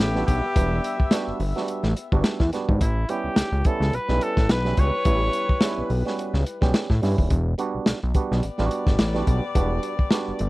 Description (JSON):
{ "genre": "funk", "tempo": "107 BPM", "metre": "4/4", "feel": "swing 56% on 16ths", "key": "E dorian", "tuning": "A4 = 440 Hz", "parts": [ { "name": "warm trumpet", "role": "melody", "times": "0.0-5.9 s", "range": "E4 to C#5", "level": "-27 LUFS", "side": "equal", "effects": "none" }, { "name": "warm horn section", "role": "second line", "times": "0.0-10.5 s", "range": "G3 to E5", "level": "-32 LUFS", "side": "left 4 dB", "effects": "none" }, { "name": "fat analog bass", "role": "bass", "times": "0.0-10.5 s", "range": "D#1 to A2", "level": "-23 LUFS", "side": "equal", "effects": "none" }, { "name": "crunchy breakbeat drum kit", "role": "drums", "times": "0.0-10.5 s", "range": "hi-hat, kick drum, snare drum", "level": "-22 LUFS", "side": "equal", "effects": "none" }, { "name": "clav", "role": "stabs", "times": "0.1-10.4 s", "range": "F#3 to G4", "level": "-28 LUFS", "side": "right 5 dB", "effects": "auto-wah" } ], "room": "little or no reverb", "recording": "dry, close 1970s-style studio recording", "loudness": "-20 LUFS", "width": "side -20 dB against mid", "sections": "0.0-10.5 A section", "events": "none", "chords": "0.0 Em7; 2.8 A9; 7.3 Em7" }